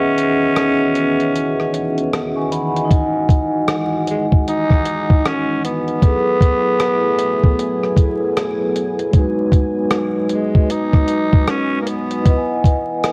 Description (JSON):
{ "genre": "lo-fi hip hop", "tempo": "77 BPM", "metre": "4/4", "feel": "swing 63% on 16ths", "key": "E major", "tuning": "A4 = 440 Hz", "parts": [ { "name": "growling tenor saxophone", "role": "melody", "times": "0.0-12.7 s", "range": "G#3 to D#4", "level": "-22 LUFS", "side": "equal", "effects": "low-pass filter" }, { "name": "vibraphone with soft mallets", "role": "accompaniment", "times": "0.0-13.1 s", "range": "F#3 to C#6", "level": "-22 LUFS", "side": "equal", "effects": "cassette tape, low-pass filter" }, { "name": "dark analog pad", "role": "sustained chords", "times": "0.0-13.1 s", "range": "D#3 to G#5", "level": "-29 LUFS", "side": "equal", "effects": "chorus, low-pass filter" }, { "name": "dusty soul sampler-style drum kit", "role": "drums", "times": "0.2-13.1 s", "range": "hi-hat, kick drum, rim click", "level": "-18 LUFS", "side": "equal", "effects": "none" } ], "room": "studio ambience", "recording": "worn, warbling old tape, cassette tape, vinyl crackle, warbly pitch drift", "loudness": "-17 LUFS", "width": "mono", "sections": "0.0-13.1 A section", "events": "break 0.0-2.9", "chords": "0.0 C#m11; 2.9 Emaj9; 6.0 F#m11; 9.1 G#m7; 12.3 Emaj7" }